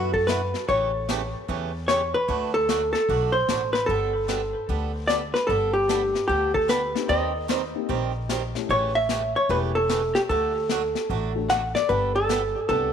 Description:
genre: country, western swing.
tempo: 150 BPM.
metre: 4/4.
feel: swing 64% on 8ths.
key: G major.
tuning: A4 = 440 Hz.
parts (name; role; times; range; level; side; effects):
vintage hollow-body jazz guitar; melody; 0.0-12.9 s; F#4 to F#5; -23 LUFS; equal; tape echo.
picked swing-style acoustic guitar; accompaniment; 0.0-12.9 s; B2 to Bb4; -32 LUFS; right 12 dB; none.
upright bass; bass; 0.0-12.9 s; E1 to F#2; -30 LUFS; equal; none.
vintage brush drum kit; drums; 0.1-12.9 s; brushed snare drum, hi-hat, kick drum, snare drum; -32 LUFS; left 7 dB; none.
dark upright piano; accompaniment; 5.9-12.9 s; A3 to A4; -33 LUFS; left 13 dB; none.
room: moderate echo chamber reverb, RT60 1.3 s.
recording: 1960s-style stereo with parts hard left and right.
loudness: -22 LUFS.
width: side -8 dB against mid.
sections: 0.0-12.9 A section.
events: none.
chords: 0.0 Bsus4; 0.7 A7; 2.3 D; 3.9 Gadd9; 7.1 Eb6; 8.7 A7; 10.3 D; 11.9 Gadd9.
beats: 0.28 | 0.68 1.08 1.48 1.88 | 2.28 2.69 3.09 3.49 | 3.89 4.29 4.69 5.09 | 5.49 5.89 6.29 6.69 | 7.09 7.49 7.89 8.29 | 8.69 9.09 9.49 9.89 | 10.29 10.69 11.09 11.49 | 11.89 12.29 12.69.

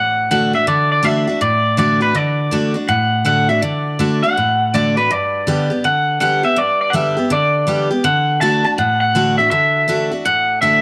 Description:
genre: rock.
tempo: 163 BPM.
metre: 4/4.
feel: swing 64% on 8ths.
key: D major.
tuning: A4 = 441 Hz.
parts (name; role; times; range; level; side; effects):
electric guitar through a small old amp; melody; 0.0-10.8 s; B4 to A5; -18 LUFS; equal; tape echo.
picked steel-string acoustic guitar; accompaniment; 0.0-10.8 s; G2 to G4; -20 LUFS; equal; none.
room: light reverb, small room ambience.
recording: none.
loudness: -16 LUFS.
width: mono.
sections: 0.0-10.8 A section.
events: none.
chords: 0.0 D; 5.1 G; 8.0 D.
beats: 0.30 | 0.67 1.04 1.41 1.78 | 2.15 2.52 2.88 3.25 | 3.62 3.99 4.36 4.73 | 5.10 5.47 5.84 6.21 | 6.57 6.94 7.31 7.68 | 8.05 8.41 8.78 9.15 | 9.52 9.88 10.25 10.62.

